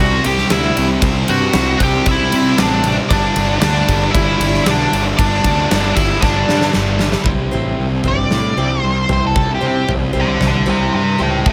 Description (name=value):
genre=quiet-loud alternative rock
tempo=115 BPM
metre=4/4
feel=straight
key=unclear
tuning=A4 = 441 Hz
part: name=octave-fuzz lead guitar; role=melody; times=0.0-11.5 s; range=D4 to G5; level=-20 LUFS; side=equal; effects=distortion
part: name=heavy high-gain guitar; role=riff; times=0.0-7.3 s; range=G2 to C5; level=-26 LUFS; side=equal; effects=distortion
part: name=thick fuzz guitar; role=riff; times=0.0-11.5 s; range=D2 to C5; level=-25 LUFS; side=equal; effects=distortion
part: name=thick fuzz guitar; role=riff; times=0.0-7.3 s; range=G2 to C4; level=-24 LUFS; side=equal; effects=none
part: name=fuzz picked electric bass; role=bass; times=0.0-11.5 s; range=D1 to C3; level=-22 LUFS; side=equal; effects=overdrive
part: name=huge arena drum kit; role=drums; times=0.2-11.5 s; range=kick drum, ride cymbal, snare drum, toms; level=-21 LUFS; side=equal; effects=none
part: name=picked acoustic archtop guitar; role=arpeggios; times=7.5-11.5 s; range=C4 to C5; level=-26 LUFS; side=equal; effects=none
room=light reverb, small room ambience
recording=none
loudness=-15 LUFS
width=mono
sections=0.0-7.3 A section; 7.3-11.5 B section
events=drum fill 6.2-7.3; half time 7.3-11.5; lead electric guitar solo 7.3-11.5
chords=0.0 Csus2; 3.1 G6; 7.3 C